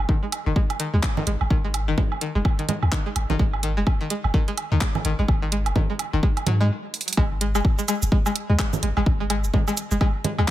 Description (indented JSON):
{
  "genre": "minimal techno",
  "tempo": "127 BPM",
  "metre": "4/4",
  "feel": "swing 60% on 16ths",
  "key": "unclear",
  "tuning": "A4 = 435 Hz",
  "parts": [
    { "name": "punchy sub bass", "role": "bass", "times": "0.0-10.5 s", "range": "F#1 to G#2", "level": "-23 LUFS", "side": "equal", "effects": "sidechain pumping" },
    { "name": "string-like resonator pluck", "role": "riff", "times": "0.1-10.4 s", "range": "D#3 to G#3", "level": "-27 LUFS", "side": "left 1 dB", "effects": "chorus, sidechain pumping, tape echo" },
    { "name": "electronic kick drum", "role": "drums", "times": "0.1-10.5 s", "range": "none", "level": "-21 LUFS", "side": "equal", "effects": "none" },
    { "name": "house drum kit", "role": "drums", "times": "0.3-10.5 s", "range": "handclaps, hi-hat, shaker", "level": "-29 LUFS", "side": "right 2 dB", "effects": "none" },
    { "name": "woodblock and congas", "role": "percussion", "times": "0.3-10.5 s", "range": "none", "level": "-30 LUFS", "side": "right 6 dB", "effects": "overdrive, dub echo" }
  ],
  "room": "digital ambience",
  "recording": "none",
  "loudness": "-20 LUFS",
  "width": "side -14 dB against mid",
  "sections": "0.0-7.2 A section; 7.2-10.5 B section",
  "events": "stop 6.7-7.2; drum fill 6.9; drop 7.2-10.5",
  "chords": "0.0 G#5"
}